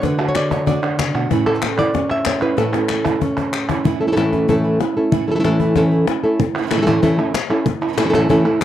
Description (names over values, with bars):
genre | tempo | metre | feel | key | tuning
flamenco | 189 BPM | 4/4 | straight | A major | A4 = 440 Hz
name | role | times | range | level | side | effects
flamenco guitar | melody | 0.0-8.6 s | A2 to E5 | -17 LUFS | equal | none
flamenco guitar | stabs | 0.0-8.6 s | A2 to F#4 | -22 LUFS | right 6 dB | none
cajon | percussion | 0.0-8.6 s | none | -24 LUFS | left 8 dB | none
palmas hand claps | percussion | 0.2-3.9, 6.6-8.6 s | none | -25 LUFS | right 1 dB | none
room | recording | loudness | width
light reverb | dry, close 1970s-style studio recording | -15 LUFS | side -11 dB against mid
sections
0.0-3.9 A section; 3.9-8.6 B section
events
drum fill 2.6-3.9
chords
0.0 D; 1.3 A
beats
| 0.03 0.35 0.67 0.99 | 1.31 1.62 1.94 2.26 | 2.58 2.90 3.22 3.54 | 3.85 4.17 4.49 4.81 | 5.13 5.45 5.76 6.08 | 6.40 6.72 7.03 7.35 | 7.67 7.99 8.30 8.62